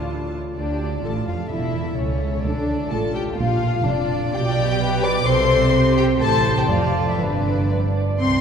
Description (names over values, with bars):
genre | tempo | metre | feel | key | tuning
quick classical-period movement for string orchestra | 117-131 BPM | 2/4 | rubato | D minor | A4 = 440 Hz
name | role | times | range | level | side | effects
warm chamber violin section | melody | 0.0-8.4 s | C#5 to D6 | -26 LUFS | left 4 dB | none
warm chamber violin section | second line | 0.0-8.4 s | C#4 to C6 | -25 LUFS | left 3 dB | none
dark chamber viola section | accompaniment | 0.0-8.4 s | C4 to D5 | -27 LUFS | right 1 dB | none
rich symphonic cello section | bass | 0.0-8.0 s | C#2 to F4 | -24 LUFS | right 2 dB | none
warm chamber double bass section | bass | 0.0-8.4 s | E1 to D2 | -24 LUFS | right 3 dB | none
room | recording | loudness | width
wet cathedral reverb, RT60 4.0 s | dark, warm production | -18 LUFS | side -7 dB against mid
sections
0.6-8.2 A section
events
none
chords
0.0 Dm; 1.5 A/E; 2.4 Dm; 3.4 Bb; 4.3 G/B; 5.3 C5; 6.2 Am; 6.7 Dm/F; 7.2 G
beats
0.06 | 0.56 1.04 | 1.51 1.98 | 2.44 2.91 | 3.38 3.85 | 4.34 4.80 | 5.27 5.74 | 6.21 6.70 | 7.20 7.71 | 8.20